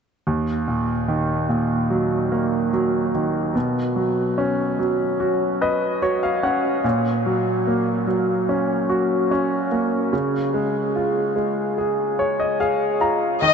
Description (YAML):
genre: pop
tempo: 73 BPM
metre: 4/4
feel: straight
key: Eb minor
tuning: A4 = 440 Hz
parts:
  - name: clear concert grand piano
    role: accompaniment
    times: 0.3-13.5 s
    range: Eb2 to Bb5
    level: -19 LUFS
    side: equal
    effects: none
  - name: warm studio violin section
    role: melody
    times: 13.4-13.5 s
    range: Eb5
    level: -14 LUFS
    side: left 6 dB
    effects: none
room: wet huge ambient reverb, RT60 7.5 s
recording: dreamy mix soaked in reverb, nothing above 8.0 kHz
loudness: -19 LUFS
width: side -6 dB against mid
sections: 0.3-13.4 A section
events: grand piano fill 5.2-6.8, 11.8-13.4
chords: 0.3 Ebm; 3.6 Bsus2; 6.8 Gb/Bb; 10.1 Db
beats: | 0.27 1.09 1.91 2.73 | 3.56 4.38 5.20 6.02 | 6.84 7.66 8.49 9.31 | 10.13 10.95 11.77 12.60 | 13.42